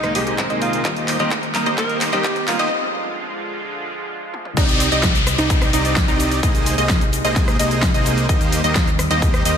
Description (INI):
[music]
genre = EDM, festival progressive house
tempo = 129 BPM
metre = 4/4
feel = straight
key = C minor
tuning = A4 = 439 Hz
[part]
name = warm alto saxophone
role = melody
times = 0.0-4.6 s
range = D4 to Bb4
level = -26 LUFS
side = right 1 dB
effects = ping-pong delay
[part]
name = picked steel-string acoustic guitar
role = accompaniment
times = 0.0-2.6 s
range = Eb3 to Eb4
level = -26 LUFS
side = right 1 dB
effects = sidechain pumping, ping-pong delay
[part]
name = lush unison pad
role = sustained chords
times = 0.0-9.6 s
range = C3 to F4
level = -29 LUFS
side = right 1 dB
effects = chorus, sidechain pumping
[part]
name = wide unison pluck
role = arpeggios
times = 0.0-9.6 s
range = Eb4 to Eb5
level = -24 LUFS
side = equal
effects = sidechain pumping, ping-pong delay
[part]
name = dense compressed supersaw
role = riff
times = 0.0-9.6 s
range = Bb3 to Eb5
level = -23 LUFS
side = right 1 dB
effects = sidechain pumping, low-pass filter, ping-pong delay
[part]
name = fat analog bass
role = bass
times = 0.0-9.6 s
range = C2 to Eb2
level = -25 LUFS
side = equal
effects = sidechain pumping
[part]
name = big-room dance drum kit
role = drums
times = 0.0-9.5 s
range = crash cymbal, handclaps, hi-hat, rim click, shaker, snare drum, toms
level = -24 LUFS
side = left 1 dB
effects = overdrive, studio reverb
[part]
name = riser and downlifter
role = sound effects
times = 0.1-8.3 s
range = none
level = -27 LUFS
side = left 1 dB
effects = none
[part]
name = electronic kick drum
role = drums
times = 0.4-9.3 s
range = none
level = -20 LUFS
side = equal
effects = high-pass filter on kick, studio reverb, high-pass filter on room
[sound]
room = light reverb, digital ambience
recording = high-pass filter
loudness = -16 LUFS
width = side -8 dB against mid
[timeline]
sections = 0.0-4.6 A section; 4.6-9.6 B section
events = build-up 0.0-4.6; drum fill 0.0-2.7, 4.3; break 2.7-4.6; drop 4.6-9.6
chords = 0.0 Abadd9/C; 0.8 Eb6; 2.7 Ddim; 4.6 Cmadd9; 6.4 Abadd9/C; 8.3 Eb6